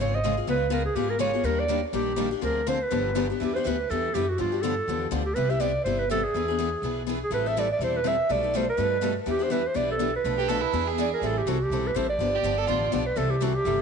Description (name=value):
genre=acoustic string swing (jazz manouche)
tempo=246 BPM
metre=4/4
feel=swing 57% on 8ths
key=E minor from 3.4 s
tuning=A4 = 440 Hz
part: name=warm clarinet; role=melody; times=0.0-13.8 s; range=F4 to E5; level=-26 LUFS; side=right 2 dB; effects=tape echo
part: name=picked steel-string acoustic guitar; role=accompaniment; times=0.0-13.8 s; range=B2 to A4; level=-30 LUFS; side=left 13 dB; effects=none
part: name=picked steel-string acoustic guitar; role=accompaniment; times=0.0-13.8 s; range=B2 to B4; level=-34 LUFS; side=right 12 dB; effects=none
part: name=upright bass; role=bass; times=0.0-13.8 s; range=E1 to G2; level=-31 LUFS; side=equal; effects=none
part: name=rich violin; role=second line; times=10.4-12.9 s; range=E4 to A4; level=-31 LUFS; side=right 12 dB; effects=none
room=moderate plate reverb, RT60 2.2 s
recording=1960s-style stereo with parts hard left and right, nothing above 10.6 kHz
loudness=-23 LUFS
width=side -6 dB against mid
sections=0.0-3.4 A section; 3.4-11.2 B section; 11.2-13.8 C section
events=none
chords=0.5 Db7; 1.5 Ebmaj7; 2.4 Dm7b5; 2.9 G7; 3.4 Em7; 4.4 G13; 5.4 Cmaj7; 6.3 E7; 7.3 Am7; 8.3 B7alt; 9.3 Em7; 10.2 Bm7b5; 10.7 E7; 11.2 Am7; 12.2 G7; 13.2 C6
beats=0.23 | 0.47 0.72 0.96 1.21 | 1.45 1.70 1.94 2.18 | 2.43 2.67 2.92 3.16 | 3.40 3.65 3.89 4.14 | 4.38 4.63 4.87 5.12 | 5.36 5.61 5.85 6.09 | 6.34 6.58 6.83 7.07 | 7.32 7.56 7.80 8.05 | 8.29 8.54 8.78 9.02 | 9.27 9.51 9.76 10.00 | 10.24 10.49 10.73 10.98 | 11.22 11.46 11.71 11.95 | 12.20 12.44 12.69 12.93 | 13.17 13.42 13.66